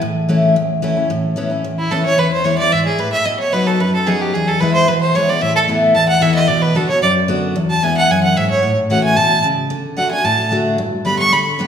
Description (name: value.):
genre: bluegrass.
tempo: 223 BPM.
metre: 4/4.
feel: straight.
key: A major.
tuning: A4 = 440 Hz.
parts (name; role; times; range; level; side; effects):
picked steel-string acoustic guitar; accompaniment; 0.0-11.7 s; E2 to G4; -16 LUFS; left 2 dB; none.
clear fiddle; melody; 1.8-11.6 s; E4 to C#6; -16 LUFS; right 2 dB; none.
room: wet recital hall reverb, RT60 1.7 s.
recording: recorded in a church or concert hall.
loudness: -13 LUFS.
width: side -8 dB against mid.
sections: 0.0-1.1 A section; 1.1-9.7 B section; 9.7-11.7 B section.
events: fiddle solo 1.1-11.7.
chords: 0.0 A; 1.1 Aadd9; 2.2 E; 3.3 B; 4.3 E; 5.4 Asus2; 6.5 Bm; 7.6 E; 8.6 A6; 9.7 D; 10.8 G.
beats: | 0.03 0.30 0.57 0.84 | 1.11 1.38 1.65 1.91 | 2.18 2.45 2.72 2.99 | 3.26 3.53 3.80 4.07 | 4.34 4.61 4.87 5.14 | 5.41 5.68 5.95 6.22 | 6.49 6.76 7.03 7.29 | 7.56 7.83 8.10 8.37 | 8.63 8.90 9.17 9.44 | 9.71 9.98 10.24 10.51 | 10.78 11.05 11.32 11.59.